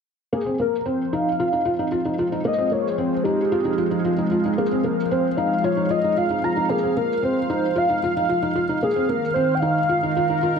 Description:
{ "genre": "electronica", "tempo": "113 BPM", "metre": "4/4", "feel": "straight", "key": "F minor", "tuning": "A4 = 440 Hz", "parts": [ { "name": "warm velvety synth lead", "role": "melody", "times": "0.3-10.6 s", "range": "G4 to Bb5", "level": "-23 LUFS", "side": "equal", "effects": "chorus" }, { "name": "lush unison pad", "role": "sustained chords", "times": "0.9-10.6 s", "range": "Eb3 to F5", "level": "-25 LUFS", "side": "right 1 dB", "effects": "chorus, phaser" }, { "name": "felt-muted upright piano", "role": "riff", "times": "0.3-10.6 s", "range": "Bb3 to F4", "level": "-24 LUFS", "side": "equal", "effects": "low-pass filter" } ], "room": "wet recital hall reverb, RT60 1.4 s, small room ambience", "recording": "none", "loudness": "-19 LUFS", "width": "side -6 dB against mid", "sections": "0.3-10.6 A section", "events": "none", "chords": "0.3 Fm; 8.8 Ebsus2", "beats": "| 0.33 0.86 1.39 1.92 | 2.46 2.98 3.52 4.05 | 4.58 5.11 5.64 6.17 | 6.70 7.23 7.76 8.29 | 8.83 9.36 9.89 10.42" }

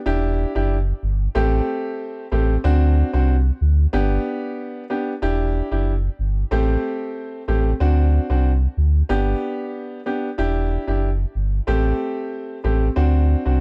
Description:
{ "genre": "dancehall", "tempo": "93 BPM", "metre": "4/4", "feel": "straight", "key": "E minor", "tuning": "A4 = 440 Hz", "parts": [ { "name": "clear grand piano", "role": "accompaniment", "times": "0.1-13.6 s", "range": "A3 to G4", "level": "-26 LUFS", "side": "equal", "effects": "none" }, { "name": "sub bass with octave", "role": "bass", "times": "0.1-13.6 s", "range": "E1 to D2", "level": "-20 LUFS", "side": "equal", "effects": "none" } ], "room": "studio reverb", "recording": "dry, gritty hardware recording, transformer saturation, cassette tape", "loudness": "-21 LUFS", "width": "mono", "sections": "0.0-5.2 A section; 5.2-13.6 B section", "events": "none", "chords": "0.1 Em7; 1.4 Am7; 2.6 D7; 3.9 G; 5.2 Em7; 6.5 Am7; 7.8 D7; 9.1 G; 10.4 Em7; 11.7 Am7; 13.0 D7", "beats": "| 0.06 0.71 1.35 2.00 | 2.64 3.29 3.93 4.58 | 5.22 5.87 6.51 7.16 | 7.80 8.45 9.10 9.74 | 10.38 11.03 11.68 12.32 | 12.97" }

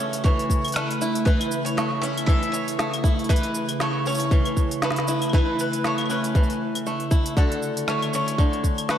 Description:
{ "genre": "folktronica", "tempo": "118 BPM", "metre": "4/4", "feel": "swing 56% on 16ths", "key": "unclear", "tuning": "A4 = 440 Hz", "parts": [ { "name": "bowl-back mandolin", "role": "melody", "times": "0.0-9.0 s", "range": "A4 to E5", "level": "-29 LUFS", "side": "equal", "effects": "diffuse ambient delay" }, { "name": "warbly tape-like pad", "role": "sustained chords", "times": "0.0-9.0 s", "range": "C#3 to E5", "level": "-27 LUFS", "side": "equal", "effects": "chorus, built-in reverb" }, { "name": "bluegrass banjo", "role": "arpeggios", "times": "0.0-9.0 s", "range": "D3 to F#4", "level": "-28 LUFS", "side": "equal", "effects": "diffuse ambient delay" }, { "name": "organic electronic drum kit", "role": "drums", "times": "0.1-9.0 s", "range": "claves, hi-hat, shaker, snare drum", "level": "-30 LUFS", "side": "equal", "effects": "none" }, { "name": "electronic kick drum", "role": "drums", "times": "0.2-8.8 s", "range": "none", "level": "-20 LUFS", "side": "equal", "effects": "none" } ], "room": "wet lush hall reverb, RT60 1.9 s", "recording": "dreamy mix soaked in reverb", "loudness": "-20 LUFS", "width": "side -10 dB against mid", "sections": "0.0-9.0 A section", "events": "none", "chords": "0.0 A; 7.4 Dmaj7", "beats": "0.25 0.76 | 1.27 1.78 2.29 2.79 | 3.30 3.81 4.32 4.83 | 5.34 5.85 6.36 6.86 | 7.37 7.88 8.39 8.90" }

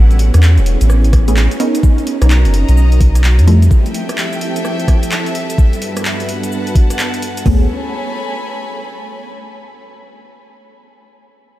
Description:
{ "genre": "UK garage, two-step garage", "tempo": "128 BPM", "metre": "4/4", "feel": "swing 63% on 16ths", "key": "unclear", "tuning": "A4 = 440 Hz", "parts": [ { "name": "soft string machine", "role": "sustained chords", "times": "0.0-7.7 s", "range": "G2 to A#4", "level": "-24 LUFS", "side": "equal", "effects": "ensemble chorus, sidechain pumping" }, { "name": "soft dub sub bass", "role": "bass", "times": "0.0-3.7, 7.5-7.7 s", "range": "E1 to F2", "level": "-9 LUFS", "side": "equal", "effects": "none" }, { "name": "warm chamber string section", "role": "texture", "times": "0.0-9.3 s", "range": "F3 to B5", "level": "-24 LUFS", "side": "equal", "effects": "sidechain pumping" }, { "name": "punchy analog drum machine", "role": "drums", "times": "0.1-7.4 s", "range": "handclaps, hi-hat, rim click, shaker", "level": "-23 LUFS", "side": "equal", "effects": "overdrive" }, { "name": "garage drum kit", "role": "drums", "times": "1.1-7.6 s", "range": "hi-hat, kick drum, toms", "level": "-11 LUFS", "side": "equal", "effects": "overdrive" }, { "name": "punchy chord stab", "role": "stabs", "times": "1.3-3.6, 7.5-7.6 s", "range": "F3 to Bb4", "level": "-22 LUFS", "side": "equal", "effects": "chorus, phaser, diffuse ambient delay" } ], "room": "light reverb, digital ambience", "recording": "none", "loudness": "-11 LUFS", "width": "side -15 dB against mid", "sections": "0.0-7.5 A section; 7.5-9.3 B section", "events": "filter sweep on string machine 0.0-7.5", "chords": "0.0 Amaj9; 1.8 Bmaj9; 3.5 Fmaj9; 5.6 Gmaj9; 7.5 Amaj9", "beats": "0.43 0.90 1.36 | 1.83 2.30 2.77 3.24 | 3.71 4.18 4.65 5.12 | 5.58 6.05 6.52 6.99 | 7.46 7.93 8.40 8.87" }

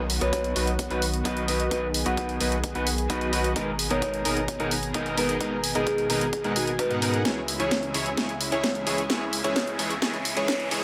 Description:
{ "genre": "EDM, festival progressive house", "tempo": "130 BPM", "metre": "4/4", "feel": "straight", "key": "B major", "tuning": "A4 = 439 Hz", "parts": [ { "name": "electric guitar through a small old amp", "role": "accompaniment", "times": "0.0-10.8 s", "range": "G#2 to B4", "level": "-33 LUFS", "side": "equal", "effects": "sidechain pumping, tape echo" }, { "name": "lush unison pad", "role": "sustained chords", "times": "0.0-10.8 s", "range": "B2 to A#5", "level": "-37 LUFS", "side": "equal", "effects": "chorus, sidechain pumping" }, { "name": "saturated sub bass", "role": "bass", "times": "0.0-10.8 s", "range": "G#1 to G#2", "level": "-36 LUFS", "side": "equal", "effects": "sidechain pumping" }, { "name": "house drum kit", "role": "drums", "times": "0.1-10.8 s", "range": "hi-hat, snare drum", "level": "-31 LUFS", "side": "equal", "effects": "none" }, { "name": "marimba with medium mallets", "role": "melody", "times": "0.2-10.7 s", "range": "F#4 to F#5", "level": "-34 LUFS", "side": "equal", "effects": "tape echo" }, { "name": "dense compressed supersaw", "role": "riff", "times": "0.2-10.8 s", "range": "B3 to G#5", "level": "-33 LUFS", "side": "equal", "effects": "sidechain pumping, low-pass filter, tape echo" }, { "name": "electronic kick drum", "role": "drums", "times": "0.3-10.6 s", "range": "none", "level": "-37 LUFS", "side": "equal", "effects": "none" }, { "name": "riser", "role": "sound effects", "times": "8.4-10.8 s", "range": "none", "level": "-41 LUFS", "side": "equal", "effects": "none" } ], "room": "light reverb", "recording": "high-pass filter", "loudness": "-26 LUFS", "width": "mono", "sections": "0.0-10.8 A section", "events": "build-up 0.0-10.8; filter sweep on supersaw synth 0.0-10.8; drum fill 7.3-10.8; riser 8.4-10.8", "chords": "0.0 B; 3.6 G#madd9; 7.3 C#m", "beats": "0.33 0.79 1.25 | 1.71 2.17 2.64 3.10 | 3.56 4.02 4.48 4.94 | 5.41 5.87 6.33 6.79 | 7.25 7.71 8.17 8.64 | 9.10 9.56 10.02 10.48" }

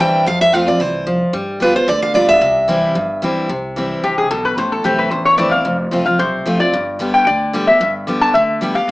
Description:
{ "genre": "bluegrass", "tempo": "223 BPM", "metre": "4/4", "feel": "straight", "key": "unclear", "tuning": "A4 = 442 Hz", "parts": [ { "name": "picked steel-string acoustic guitar", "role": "melody", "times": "0.0-3.2 s", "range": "B4 to G5", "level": "-14 LUFS", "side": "right 1 dB", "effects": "none" }, { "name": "picked steel-string acoustic guitar", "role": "accompaniment", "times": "0.0-8.9 s", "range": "E2 to G4", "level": "-18 LUFS", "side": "equal", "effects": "none" }, { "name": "upright bass", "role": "bass", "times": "0.0-8.9 s", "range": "F1 to G2", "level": "-29 LUFS", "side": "equal", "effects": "none" }, { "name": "lap resonator guitar", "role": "second line", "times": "4.0-8.9 s", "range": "G4 to A5", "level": "-14 LUFS", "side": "left 1 dB", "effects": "none" } ], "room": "moderate studio reverb, RT60 0.6 s", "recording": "small speaker sound", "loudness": "-13 LUFS", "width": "side -19 dB against mid", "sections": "0.0-3.5 A section; 3.5-8.9 B section", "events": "resonator guitar played with a steel bar solo 3.5-8.9", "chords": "0.3 F; 1.3 G7; 2.4 C; 4.6 Am; 5.7 F; 6.7 G", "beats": "| 0.26 0.53 0.80 1.07 | 1.34 1.61 1.88 2.15 | 2.42 2.69 2.96 3.23 | 3.49 3.76 4.03 4.30 | 4.57 4.84 5.11 5.38 | 5.65 5.92 6.19 6.46 | 6.73 7.00 7.27 7.54 | 7.81 8.07 8.35 8.61 | 8.88" }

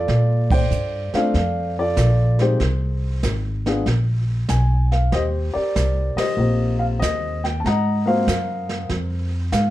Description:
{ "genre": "jazz piano trio", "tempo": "95 BPM", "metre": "4/4", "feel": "swing 67% on 8ths", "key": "unclear", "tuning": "A4 = 440 Hz", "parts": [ { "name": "dark baby grand piano", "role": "melody", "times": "0.0-9.7 s", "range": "Ab3 to Bb5", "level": "-22 LUFS", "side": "left 1 dB", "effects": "none" }, { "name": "upright bass", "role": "bass", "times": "0.0-9.7 s", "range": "Ab1 to Bb2", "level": "-20 LUFS", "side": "equal", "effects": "none" }, { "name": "jazz brush drum kit", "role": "drums", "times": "0.1-9.7 s", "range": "brushed snare drum, crash cymbal, hi-hat, kick drum, ride cymbal, snare drum", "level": "-27 LUFS", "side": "right 2 dB", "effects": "none" } ], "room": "light reverb", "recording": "dark, warm production", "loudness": "-18 LUFS", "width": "side -15 dB against mid", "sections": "0.0-9.7 A section", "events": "band accent 0.4-0.7, 6.1-6.4", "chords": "0.1 Bbmaj9; 2.6 Fm (rootless); 3.9 Abmadd9/Bb; 5.1 Eb6; 7.6 Ab13", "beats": "| 0.09 0.72 1.35 1.98 | 2.61 3.24 3.87 4.49 | 5.12 5.75 6.38 7.01 | 7.64 8.27 8.90 9.53" }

